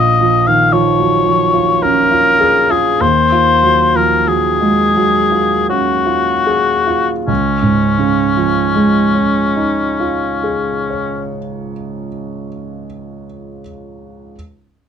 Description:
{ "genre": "classical, impressionist duo for oboe and grand piano", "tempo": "36-58 BPM", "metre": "3/4", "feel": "rubato", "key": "Db major", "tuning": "A4 = 441 Hz", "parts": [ { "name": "warm oboe", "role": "melody", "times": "0.0-11.4 s", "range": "Db4 to F5", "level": "-14 LUFS", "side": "left 4 dB", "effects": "none" }, { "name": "warm concert grand piano", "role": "accompaniment", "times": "0.0-14.4 s", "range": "Bb1 to Db5", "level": "-15 LUFS", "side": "right 3 dB", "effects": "none" } ], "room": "light reverb", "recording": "dark, warm production", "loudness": "-11 LUFS", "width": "side -8 dB against mid", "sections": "0.0-7.3 A section; 7.3-12.2 B section", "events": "slowing down 0.0-7.3", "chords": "0.0 Bbm7; 3.0 Ebm11; 7.3 Dbadd9" }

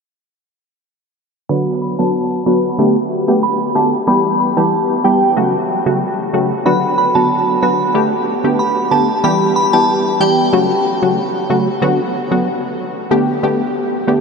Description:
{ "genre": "dancehall", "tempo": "93 BPM", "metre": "4/4", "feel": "straight", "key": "B minor", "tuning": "A4 = 439 Hz", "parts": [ { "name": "glassy synth bell", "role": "melody", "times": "1.5-10.4 s", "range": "G5 to B5", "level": "-18 LUFS", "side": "right 1 dB", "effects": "chorus, phaser, low-pass filter, diffuse ambient delay" }, { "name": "punchy chord stab", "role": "accompaniment", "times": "1.5-14.2 s", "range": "C#3 to G4", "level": "-14 LUFS", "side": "equal", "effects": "chorus, low-pass filter" } ], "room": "wet huge ambient reverb, RT60 7.8 s", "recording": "dreamy mix soaked in reverb", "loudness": "-13 LUFS", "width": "side -5 dB against mid", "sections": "1.5-11.8 A section; 11.8-14.2 B section", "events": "filter sweep 1.5-11.8", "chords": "1.5 Bm; 2.8 Gadd9; 4.1 Em; 5.4 F#m; 6.7 Bm; 7.9 Gadd9; 9.2 Em; 10.5 F#m; 11.8 Bm; 13.1 Gadd9" }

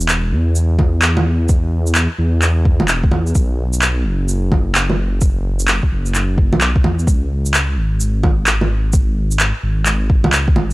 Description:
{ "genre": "future garage", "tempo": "129 BPM", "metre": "4/4", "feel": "swing 64% on 16ths", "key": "C# minor", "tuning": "A4 = 442 Hz", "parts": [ { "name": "dark detuned saw bass", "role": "bass", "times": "0.0-10.7 s", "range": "E1 to E2", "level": "-16 LUFS", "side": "equal", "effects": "transformer saturation, sidechain pumping" }, { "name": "electronic shaker, handclaps and bongos", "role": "drums", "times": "0.0-10.7 s", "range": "none", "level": "-18 LUFS", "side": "right 1 dB", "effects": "none" }, { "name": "electronic kick drum", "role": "drums", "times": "0.8-10.5 s", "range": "none", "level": "-15 LUFS", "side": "equal", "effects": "none" } ], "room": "little or no reverb", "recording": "dry, gritty hardware recording, cassette tape", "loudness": "-13 LUFS", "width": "side -20 dB against mid", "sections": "0.0-10.7 A section", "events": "none", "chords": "none" }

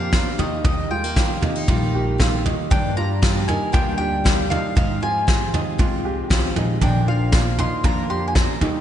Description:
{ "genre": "indie folk with a building arrangement", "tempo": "117 BPM", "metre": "4/4", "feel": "straight", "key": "Eb major", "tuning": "A4 = 439 Hz", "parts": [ { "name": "mandolin", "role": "melody", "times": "0.0-8.8 s", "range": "Eb5 to C6", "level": "-27 LUFS", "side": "equal", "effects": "slapback echo" }, { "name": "fingerpicked steel-string acoustic guitar", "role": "accompaniment", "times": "0.0-8.8 s", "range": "Eb2 to Bb4", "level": "-29 LUFS", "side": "left 1 dB", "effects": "slapback echo" }, { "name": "picked steel-string acoustic guitar", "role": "accompaniment", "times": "0.0-8.8 s", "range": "G2 to Bb4", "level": "-30 LUFS", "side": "left 4 dB", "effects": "slapback echo" }, { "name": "clear upright piano", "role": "arpeggios", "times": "0.0-8.8 s", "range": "D4 to G4", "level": "-28 LUFS", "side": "right 4 dB", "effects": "slapback echo" }, { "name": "upright bass", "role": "bass", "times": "0.0-8.8 s", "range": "Bb1 to Ab2", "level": "-25 LUFS", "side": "equal", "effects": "none" }, { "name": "soft brush drum kit", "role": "drums", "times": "0.1-8.7 s", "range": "kick drum, snare drum, toms", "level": "-20 LUFS", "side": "equal", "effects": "none" } ], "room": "moderate lush hall reverb, RT60 2.5 s", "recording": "big arena sound, nothing above 10.4 kHz", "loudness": "-18 LUFS", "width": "side -10 dB against mid", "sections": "0.0-8.8 A section", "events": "none", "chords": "0.4 Eb; 2.7 Gm; 4.8 Fmadd9/Ab; 6.8 Bb" }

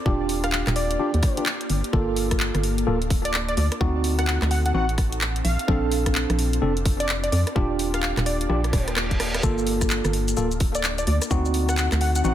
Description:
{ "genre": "UK garage, two-step garage", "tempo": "128 BPM", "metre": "4/4", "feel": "swing 62% on 16ths", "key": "G minor", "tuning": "A4 = 441 Hz", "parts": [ { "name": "ethereal airy pad", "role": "sustained chords", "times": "0.0-12.3 s", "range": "Bb3 to A4", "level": "-34 LUFS", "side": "left 2 dB", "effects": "ensemble chorus, built-in reverb, sidechain pumping" }, { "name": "tine electric piano", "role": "stabs", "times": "0.1-12.3 s", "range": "Bb3 to A4", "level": "-27 LUFS", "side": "moving between left 4 dB and right 3 dB", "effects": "auto-pan, low-pass filter, analog delay" }, { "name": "organ-like FM bass", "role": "bass", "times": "0.1-12.3 s", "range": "D1 to F2", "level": "-24 LUFS", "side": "equal", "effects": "none" }, { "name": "electronic kick drum", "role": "drums", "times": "0.1-11.4 s", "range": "none", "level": "-23 LUFS", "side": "equal", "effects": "small room ambience" }, { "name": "garage drum kit", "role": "drums", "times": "0.3-12.3 s", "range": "handclaps, hi-hat, rim click, shaker", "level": "-28 LUFS", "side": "equal", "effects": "small room ambience" }, { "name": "plucky unison lead", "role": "melody", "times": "0.4-12.3 s", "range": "D5 to F#5", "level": "-30 LUFS", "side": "equal", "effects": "cassette tape, analog delay" }, { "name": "reverse cymbal", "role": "sound effects", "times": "8.7-9.4 s", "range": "none", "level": "-32 LUFS", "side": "right 2 dB", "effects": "none" } ], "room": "light reverb, digital ambience", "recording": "echo-heavy mix", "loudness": "-20 LUFS", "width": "side -11 dB against mid", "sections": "0.0-12.3 A section", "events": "filter sweep on tine electric piano 0.0-12.3; drum fill 8.5-9.4; reverse cymbal 8.7-9.4", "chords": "0.1 Ebmaj7; 1.9 Gm7; 3.8 D7b9; 5.4 Bbmaj9; 7.6 Ebmaj7; 9.4 Gm7; 11.3 D7b9" }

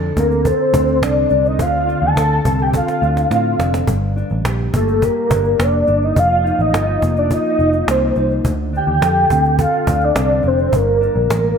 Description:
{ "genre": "indie pop, bedroom pop", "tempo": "105 BPM", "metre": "4/4", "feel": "straight", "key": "unclear", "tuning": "A4 = 441 Hz", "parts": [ { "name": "mellow electric guitar", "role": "accompaniment", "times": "0.0-11.6 s", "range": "F2 to Bb4", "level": "-21 LUFS", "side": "left 1 dB", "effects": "wide subtle chorus, vibrato effect" }, { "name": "vintage muted picked electric bass", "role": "bass", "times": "0.0-11.5 s", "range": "F1 to A2", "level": "-19 LUFS", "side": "equal", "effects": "none" }, { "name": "cajon", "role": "drums", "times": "0.0-11.5 s", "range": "none", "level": "-23 LUFS", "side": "right 1 dB", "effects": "none" }, { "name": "soft octave-layered synth lead", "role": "melody", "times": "0.2-11.6 s", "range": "A4 to A5", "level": "-16 LUFS", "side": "equal", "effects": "phaser, ensemble chorus" } ], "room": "moderate plate reverb, RT60 2.1 s", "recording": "bright 1980s-style digital production", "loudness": "-13 LUFS", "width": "side -7 dB against mid", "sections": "0.0-11.6 A section", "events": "drum fill 2.7-3.9", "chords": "0.0 Dm7; 3.9 Gm; 6.2 F7sus4; 8.4 Dm7; 10.7 Gm" }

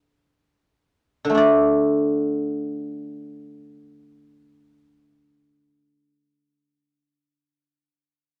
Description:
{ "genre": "chinese traditional, Chinese solo plucked strings", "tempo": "free time", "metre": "none", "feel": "none", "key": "unclear", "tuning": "A4 = 438 Hz", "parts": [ { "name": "guzheng", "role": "solo", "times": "0.0-7.9 s", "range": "D3 to D5", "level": "-21 LUFS", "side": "equal", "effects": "none" } ], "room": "moderate studio reverb, RT60 0.7 s", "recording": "none", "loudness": "-21 LUFS", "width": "mono", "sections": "0.0-1.4 A section; 1.4-5.4 B section", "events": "slowing down 0.0-1.4", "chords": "none" }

